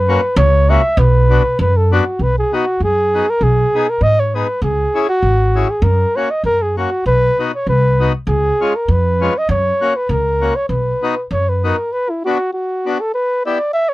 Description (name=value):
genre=alpine folk, alpine dance band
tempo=99 BPM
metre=2/4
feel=swing 54% on 8ths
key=B major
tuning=A4 = 442 Hz
part: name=mellow flugelhorn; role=melody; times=0.0-13.9 s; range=E4 to E5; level=-16 LUFS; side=equal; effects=none
part: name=upright bass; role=bass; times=0.0-11.7 s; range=G#1 to G#2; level=-15 LUFS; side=equal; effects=none
part: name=accordion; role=accompaniment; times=0.1-13.6 s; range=G#3 to G#4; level=-18 LUFS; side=left 4 dB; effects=none
room=little or no reverb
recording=dry, close 1970s-style studio recording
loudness=-13 LUFS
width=side -18 dB against mid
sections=0.0-2.2 A section; 2.2-11.9 B section; 11.9-13.9 A section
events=none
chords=0.0 F#; 1.0 Bm; 2.2 B; 3.4 G#m/B; 4.6 C#m; 5.8 F#; 7.1 B; 8.3 C#; 9.5 F#; 10.7 B; 11.9 Bm; 13.1 Em